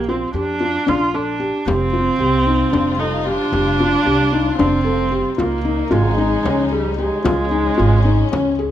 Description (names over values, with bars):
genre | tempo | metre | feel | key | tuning
contemporary instrumental, chamber music in an uneven meter | 226 BPM (eighths) | 7/8 | straight | unclear | A4 = 440 Hz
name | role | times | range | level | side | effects
dark viola | second line | 0.0-8.7 s | G3 to F4 | -20 LUFS | right 2 dB | none
upright bass | bass | 0.0-8.7 s | F1 to F2 | -21 LUFS | right 2 dB | none
felt-muted upright piano | arpeggios | 0.1-8.7 s | Db4 to A4 | -20 LUFS | left 2 dB | none
frame drum | percussion | 0.9-8.6 s | none | -26 LUFS | left 3 dB | none
dark studio string section | sustained chords | 1.7-8.7 s | C3 to F4 | -27 LUFS | left 4 dB | none
room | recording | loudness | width
light reverb | none | -15 LUFS | side -11 dB against mid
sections
0.0-8.7 A section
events
none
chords
0.0 Bb; 1.7 Fsus2; 5.4 Dbadd9